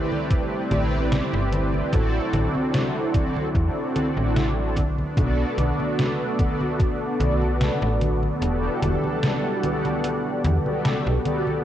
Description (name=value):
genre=vaporwave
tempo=74 BPM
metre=4/4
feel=swing 53% on 16ths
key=E minor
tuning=A4 = 439 Hz
part: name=mellow synth brass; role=accompaniment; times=0.0-11.6 s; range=B3 to D5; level=-25 LUFS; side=equal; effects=ensemble chorus, tape echo
part: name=lush unison pad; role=sustained chords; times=0.0-11.6 s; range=E3 to F#5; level=-31 LUFS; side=right 1 dB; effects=chorus
part: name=detuned 8-bit digital drum machine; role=drums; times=0.1-11.6 s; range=congas, hi-hat, snare drum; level=-27 LUFS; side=equal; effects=gated reverb
part: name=electronic kick drum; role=drums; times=0.3-7.0 s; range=none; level=-23 LUFS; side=equal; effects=none
part: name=slap-like FM bass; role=bass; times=0.7-11.2 s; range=E1 to E2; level=-24 LUFS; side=equal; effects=tube saturation
room=light reverb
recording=cassette tape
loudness=-20 LUFS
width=side -11 dB against mid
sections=0.0-11.6 A section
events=kick drops out 8.4-11.6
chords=0.0 Am11; 1.9 D7/A; 4.8 Bm7; 8.4 Em11